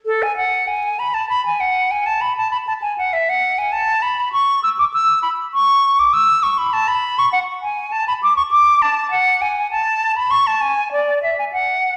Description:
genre	classical, baroque-style fantasia for unaccompanied flute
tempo	99 BPM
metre	3/4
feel	rubato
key	A major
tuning	A4 = 439 Hz
part	silver concert flute	solo	0.1-12.0 s	A4 to E6	-17 LUFS	equal	none
room	wet recital hall reverb, RT60 1.6 s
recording	vinyl crackle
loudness	-17 LUFS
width	mono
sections	0.1-12.0 A section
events	none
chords	none

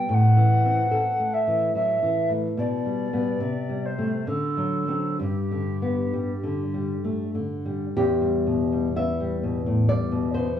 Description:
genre	romantic duo for recorder and classical guitar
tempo	59-73 BPM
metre	3/4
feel	rubato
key	G major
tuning	A4 = 440 Hz
part	mellow hollow tenor recorder	melody	0.0-7.0 s	G4 to G5	-26 LUFS	equal	none
part	nylon-string guitar	accompaniment	0.0-10.6 s	E2 to E5	-23 LUFS	left 1 dB	none
room	wet large studio reverb, RT60 1.0 s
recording	band playing live in one room, small room ambience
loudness	-22 LUFS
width	side -10 dB against mid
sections	0.0-8.0 A section; 8.0-10.6 B section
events	none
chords	0.1 Am; 2.6 G/B; 3.4 Am7/C; 4.3 D7; 5.2 G; 8.0 Em

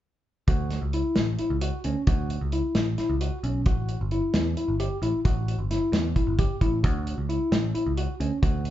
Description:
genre	progressive instrumental, band music in an uneven meter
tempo	264 BPM (eighths)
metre	7/8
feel	straight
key	unclear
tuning	A4 = 442 Hz
part	tine electric piano	arpeggios	0.5-8.7 s	C#4 to G4	-28 LUFS	left 2 dB	medium tremolo
part	picked electric bass	bass	0.5-8.7 s	G1 to E2	-28 LUFS	right 1 dB	none
part	modern studio drum kit	drums	0.5-8.7 s	hi-hat, kick drum, snare drum	-26 LUFS	equal	none
room	moderate large studio reverb, RT60 0.8 s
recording	band playing live in one room, nothing above 7.7 kHz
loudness	-23 LUFS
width	side -12 dB against mid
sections	0.5-8.7 A section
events	none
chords	0.5 D; 3.7 A5; 6.8 D

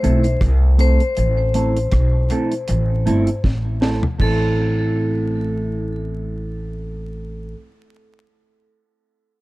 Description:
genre	roots reggae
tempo	79 BPM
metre	4/4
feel	swing 56% on 16ths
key	A minor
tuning	A4 = 439 Hz
part	vibraphone with hard mallets	melody	0.0-7.5 s	A4 to C5	-26 LUFS	left 3 dB	tape echo
part	mellow electric guitar	accompaniment	0.0-7.7 s	A3 to A4	-24 LUFS	right 2 dB	phaser, tape echo
part	upright bass	bass	0.0-7.5 s	G1 to C2	-19 LUFS	equal	none
part	deep reggae drum kit	drums	0.0-4.4 s	crash cymbal, hi-hat, kick drum, rim click, snare drum, toms	-22 LUFS	equal	none
room	little or no reverb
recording	dark, warm production, vinyl crackle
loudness	-16 LUFS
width	side -19 dB against mid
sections	0.0-4.2 A section; 4.2-7.2 B section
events	drum fill 3.4-4.2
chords	0.0 Am

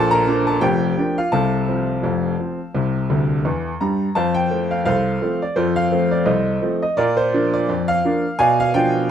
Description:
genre	ragtime piano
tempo	85 BPM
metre	2/4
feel	swing 57% on 16ths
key	F major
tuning	A4 = 438 Hz
part	warm baby grand piano	solo	0.0-9.1 s	F1 to Bb5	-17 LUFS	equal	none
room	moderate studio reverb, RT60 0.7 s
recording	dark, warm production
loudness	-17 LUFS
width	side -9 dB against mid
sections	0.0-4.2 A section; 4.2-9.1 B section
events	grand piano fill 3.1-4.2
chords	0.0 Bb; 1.3 F/C; 2.7 C; 4.2 F; 7.0 Bb; 8.4 Bdim

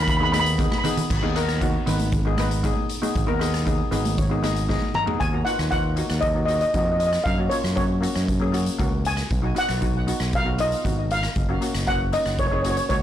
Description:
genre	calypso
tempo	117 BPM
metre	4/4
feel	straight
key	unclear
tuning	A4 = 440 Hz
part	steel pan	melody	0.0-0.5, 5.0-13.0 s	C#5 to B5	-25 LUFS	equal	tape echo
part	steel pan	accompaniment	0.0-13.0 s	A#3 to D#5	-28 LUFS	left 2 dB	none
part	overdriven fingered electric bass	bass	0.0-13.0 s	F#1 to F#2	-25 LUFS	equal	none
part	street-band drum kit	drums	0.1-13.0 s	crash cymbal, hi-hat, kick drum, rim click, snare drum, toms	-27 LUFS	equal	soft clipping on snare
part	congas	percussion	0.3-5.2 s	none	-30 LUFS	right 1 dB	none
room	moderate studio reverb, RT60 0.5 s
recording	blown-out, overdriven recording, overdrive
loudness	-20 LUFS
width	side -11 dB against mid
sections	0.0-1.1 A section; 1.1-5.2 B section; 5.2-13.0 C section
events	drum fill 0.7-1.1, 4.7-5.2; steel pan fill 3.7-5.2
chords	0.0 G#m; 5.2 D#m; 7.3 F#; 9.3 B; 11.4 F#maj7

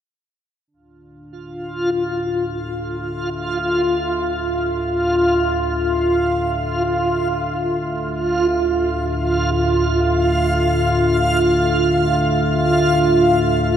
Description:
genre	dark ambient drone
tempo	free time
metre	none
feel	none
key	D minor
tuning	A4 = 440 Hz
part	dark analog pad	sustained chords	1.1-13.8 s	D4 to F5	-28 LUFS	equal	chorus, shimmer reverb
part	analog drone	drone	1.3-13.8 s	D2 to A2	-24 LUFS	left 1 dB	chorus
part	backwards swelling texture	texture	1.6-13.8 s	F4	-18 LUFS	right 1 dB	built-in reverb, shimmer reverb
room	wet huge ambient reverb, RT60 7.3 s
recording	none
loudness	-16 LUFS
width	side -9 dB against mid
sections	0.7-13.8 A section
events	fade-in on synth drone 0.7-13.8; fade-in on analog synth pad 0.7-13.8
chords	0.7 Dm

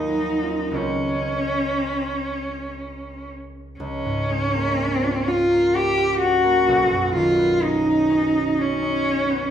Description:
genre	classical, impressionist duo for cello and harp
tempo	58-64 BPM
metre	3/4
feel	rubato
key	unclear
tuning	A4 = 440 Hz
part	warm cello	melody	0.0-9.5 s	Db4 to G4	-20 LUFS	equal	none
part	concert harp	accompaniment	0.0-9.5 s	Cb2 to F4	-25 LUFS	right 2 dB	none
room	wet recital hall reverb, RT60 1.4 s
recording	minimal, uncompressed stereo recording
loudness	-18 LUFS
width	side -9 dB against mid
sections	0.0-3.8 A section; 3.8-9.5 B section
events	none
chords	0.0 Ebm9; 0.8 Dbmaj7; 3.8 Db6; 6.7 Cbadd9

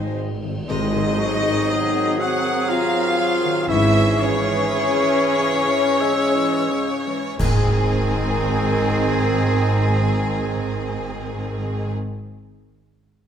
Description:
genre	classical, slow romantic movement for symphony orchestra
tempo	40-61 BPM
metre	3/4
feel	rubato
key	Ab major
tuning	A4 = 440 Hz
part	rich chamber violin section	melody	0.0-11.9 s	Ab4 to Ab5	-28 LUFS	left 1 dB	none
part	clear clarinet	second line	0.0-11.9 s	Db4 to Ab4	-31 LUFS	left 1 dB	none
part	clear oboe	second line	0.0-11.9 s	C4 to Gb5	-30 LUFS	right 1 dB	none
part	rich chamber violin section	second line	0.0-11.9 s	Ab4 to Ab5	-31 LUFS	left 3 dB	none
part	silver concert flute	second line	0.0-11.9 s	Eb5 to Fb6	-31 LUFS	left 3 dB	none
part	rich studio viola section	accompaniment	0.0-11.9 s	C3 to C5	-28 LUFS	equal	none
part	warm bassoon	accompaniment	0.0-11.9 s	Eb3 to C4	-29 LUFS	right 2 dB	none
part	mellow French horn section	sustained chords	0.0-11.9 s	Ab3 to Gb4	-26 LUFS	left 3 dB	none
part	warm trombone section	sustained chords	0.0-11.9 s	Ab2 to Db4	-29 LUFS	right 4 dB	none
part	concert harp	arpeggios	0.0-12.3 s	Ab2 to Fb6	-30 LUFS	left 10 dB	none
part	warm trumpet	stabs	0.0-11.9 s	Ab4 to Eb5	-30 LUFS	right 5 dB	none
part	rich studio cello section	bass	0.0-11.9 s	Ab2 to Ab3	-25 LUFS	right 1 dB	none
part	warm chamber double bass section	bass	0.0-11.9 s	Ab1	-27 LUFS	right 3 dB	none
part	tam-tam, clash cymbals and concert bass drum	percussion	0.7-9.9 s	none	-29 LUFS	equal	none
room	moderate recital hall reverb, RT60 1.5 s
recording	none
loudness	-18 LUFS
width	side -8 dB against mid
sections	0.7-7.4 A section; 7.4-11.2 B section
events	slowing down 0.0-7.4; band accent 0.7-1.7, 7.4-8.6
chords	0.0 Ab; 0.7 Ab7; 3.7 Dbm/Ab; 7.4 Ab

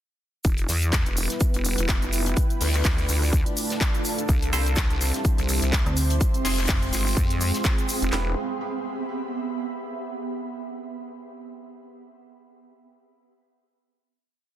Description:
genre	bass house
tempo	125 BPM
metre	4/4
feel	swing 56% on 16ths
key	E phrygian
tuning	A4 = 441 Hz
part	dark analog pad	sustained chords	0.8-8.4 s	G3 to D5	-33 LUFS	right 2 dB	chorus, vintage 12-bit sampler grit, sidechain pumping
part	vowel-sweep wobble bass	bass	0.4-8.3 s	E1 to F2	-25 LUFS	equal	chorus, tube saturation, sidechain pumping
part	damped 70s drum kit	drums	0.4-8.0 s	hi-hat, shaker, snare drum	-37 LUFS	left 3 dB	sidechain pumping on hats, high-pass filter on hats, high-pass filter on snare, sidechain pumping on perc, high-pass filter on perc, high-pass filter on room
part	house drum kit	drums	0.4-8.3 s	handclaps, kick drum, snare drum	-24 LUFS	equal	none
part	house drum kit	drums	0.4-8.1 s	cabasa, handclaps, hi-hat	-29 LUFS	equal	none
part	ethereal airy pad	texture	1.2-10.0 s	B3 to C6	-32 LUFS	right 2 dB	ensemble chorus, built-in reverb, sidechain pumping
part	band-passed chord stab	stabs	4.5-8.3 s	B3 to C5	-34 LUFS	right 2 dB	phaser, wide subtle chorus, sidechain pumping, tape echo
part	metallic FM bass	bass	5.9-6.9 s	F1 to D2	-24 LUFS	equal	tube saturation, sidechain pumping
room	little or no reverb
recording	dense, heavily limited modern master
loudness	-22 LUFS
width	side -12 dB against mid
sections	0.4-8.1 drop; 8.1-10.0 final chord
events	drop 0.4-8.1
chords	0.4 Em; 2.4 Dm; 4.3 C; 6.2 Fm; 8.1 Em

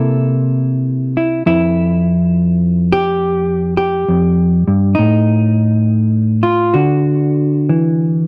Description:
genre	solo jazz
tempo	68 BPM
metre	4/4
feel	swing 66% on 8ths, rubato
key	F major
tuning	A4 = 440 Hz
part	hollow-body jazz guitar	solo	0.0-8.3 s	F2 to A4	-14 LUFS	equal	none
room	little or no reverb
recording	dry, close 1970s-style studio recording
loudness	-14 LUFS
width	mono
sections	0.0-8.3 A section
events	none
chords	0.0 C6; 1.4 Fsus2; 5.0 N.C.; 6.7 D

